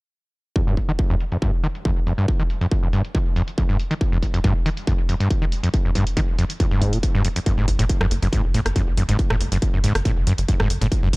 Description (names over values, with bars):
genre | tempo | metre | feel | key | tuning
driving peak-time techno | 139 BPM | 4/4 | straight | unclear | A4 = 440 Hz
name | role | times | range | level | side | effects
overdriven acid bass | riff | 0.6-11.1 s | F2 to Eb3 | -22 LUFS | equal | distortion, cassette tape, sidechain pumping, tape echo
electronic kick drum | drums | 0.6-11.2 s | none | -21 LUFS | equal | distortion
techno drum kit | drums | 0.6-11.2 s | hi-hat, rim click | -30 LUFS | equal | low-pass filter on hats, low-pass filter on snare, low-pass filter on room
tight sequencer bass | bass | 7.6-11.2 s | Gb1 | -24 LUFS | equal | sidechain pumping
room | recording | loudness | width
little or no reverb | dry, gritty hardware recording | -18 LUFS | side -26 dB against mid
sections
0.6-11.2 A section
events
filter sweep on drum 0.6-11.2; filter sweep on acid bass 0.6-11.2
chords
none